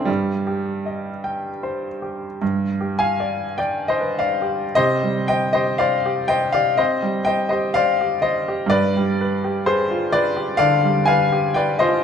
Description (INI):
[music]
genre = classical, romantic nocturne for solo piano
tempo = 50-64 BPM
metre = 4/4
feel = rubato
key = C minor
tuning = A4 = 441 Hz
[part]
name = clear baby grand piano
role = solo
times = 0.0-12.0 s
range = G2 to Ab5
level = -18 LUFS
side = left 1 dB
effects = none
[sound]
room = moderate recital hall reverb, RT60 1.7 s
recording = close, detailed microphones, lossy compression artefacts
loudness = -18 LUFS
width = side -7 dB against mid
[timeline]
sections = 0.0-4.8 A section; 4.8-12.0 B section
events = none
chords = 0.1 Cm/G; 2.4 G; 4.8 Cm; 8.7 G7